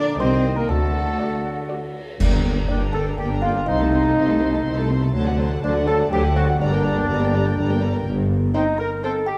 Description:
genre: cinematic, playful, whimsical film cue.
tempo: 123 BPM.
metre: 3/4.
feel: straight.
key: G minor.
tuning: A4 = 440 Hz.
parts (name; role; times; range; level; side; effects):
music box; melody; 0.0-9.4 s; D5 to D6; -32 LUFS; equal; none.
warm studio violin section; melody; 0.0-9.1 s; D5 to C6; -39 LUFS; equal; none.
clear clarinet; second line; 0.0-9.4 s; D4 to Eb5; -33 LUFS; equal; none.
mellow hollow flute section; second line; 0.0-9.3 s; D5 to Bb5; -33 LUFS; equal; none.
warm oboe; second line; 0.0-9.4 s; D4 to D5; -34 LUFS; equal; none.
warm studio violin section; second line; 0.0-9.1 s; A4 to D5; -36 LUFS; equal; none.
dark bassoon; accompaniment; 0.0-1.9 s; D3 to Eb3; -32 LUFS; equal; none.
warm studio viola section; accompaniment; 0.0-9.1 s; F#3 to Eb5; -31 LUFS; equal; none.
mellow French horn section; sustained chords; 0.0-9.4 s; A3 to Bb4; -29 LUFS; equal; none.
warm studio cello section; bass; 0.0-8.5 s; G2 to D4; -31 LUFS; equal; none.
mellow tuba; bass; 0.2-8.5 s; G1 to D2; -29 LUFS; equal; none.
warm chamber double bass section; bass; 0.2-8.5 s; G1 to D2; -27 LUFS; equal; none.
clash cymbals and concert bass drum; percussion; 2.2-3.1 s; none; -28 LUFS; equal; none.
room: wet concert hall reverb, RT60 2.0 s.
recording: dark, warm production.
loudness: -21 LUFS.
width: mono.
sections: 0.0-2.2 A section; 2.2-9.4 B section.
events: band accent 2.2-2.7.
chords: 0.2 Cm; 0.7 D; 2.2 Gm; 3.7 Adim/C; 5.1 D7; 6.6 Gm; 8.1 C5/G.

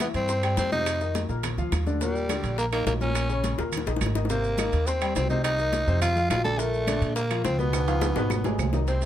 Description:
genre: latin, salsa.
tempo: 210 BPM.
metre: 4/4.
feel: straight.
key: unclear.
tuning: A4 = 440 Hz.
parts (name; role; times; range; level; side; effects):
raspy tenor saxophone; melody; 0.0-9.1 s; G3 to A4; -28 LUFS; equal; none.
clear concert grand piano; accompaniment; 0.0-9.1 s; Bb2 to C6; -31 LUFS; left 4 dB; none.
bongos; percussion; 0.0-9.0 s; none; -35 LUFS; left 6 dB; none.
claves; percussion; 0.0-8.7 s; none; -39 LUFS; right 9 dB; none.
congas; percussion; 0.0-9.1 s; none; -36 LUFS; left 2 dB; none.
maracas; percussion; 0.0-9.1 s; none; -41 LUFS; right 7 dB; none.
timbales; percussion; 0.0-9.1 s; none; -35 LUFS; right 6 dB; none.
upright bass; bass; 0.1-9.1 s; Ab1 to Bb2; -27 LUFS; right 1 dB; none.
room: light reverb.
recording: close, detailed microphones.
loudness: -23 LUFS.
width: side -11 dB against mid.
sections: 0.0-8.9 A section.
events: drum fill 3.6-4.3, 7.7-8.9.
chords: 0.0 C; 0.9 F5; 1.4 Bb; 2.0 Ebmaj7; 3.2 Bbm; 3.7 Eb5; 4.3 Abmaj9; 5.4 Cm; 6.0 F5; 6.6 Bbmaj7; 7.7 Db9.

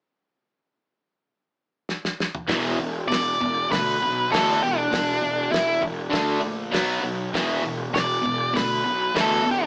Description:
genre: garage rock duo or trio.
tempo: 99 BPM.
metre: 4/4.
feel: straight.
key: unclear.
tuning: A4 = 440 Hz.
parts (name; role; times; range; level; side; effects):
cloth-damped thuddy drum kit; drums; 1.9-9.3 s; hi-hat, kick drum, snare drum, toms; -32 LUFS; equal; none.
crunchy overdriven guitar; riff; 2.5-9.7 s; E2 to D4; -29 LUFS; equal; spring reverb.
fuzz fingered electric bass; bass; 2.5-9.7 s; E1 to D2; -31 LUFS; equal; overdrive, tube saturation.
octave-fuzz lead guitar; melody; 3.1-9.7 s; D4 to D5; -24 LUFS; equal; distortion.
room: moderate studio ambience, RT60 0.5 s.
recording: band playing live in one room, small speaker sound.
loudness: -24 LUFS.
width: mono.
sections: 0.1-2.5 A section; 2.5-9.7 B section.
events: drum fill 1.9-2.5.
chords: 0.1 N.C.; 2.5 E5; 6.1 D5; 6.7 B5; 7.3 E5.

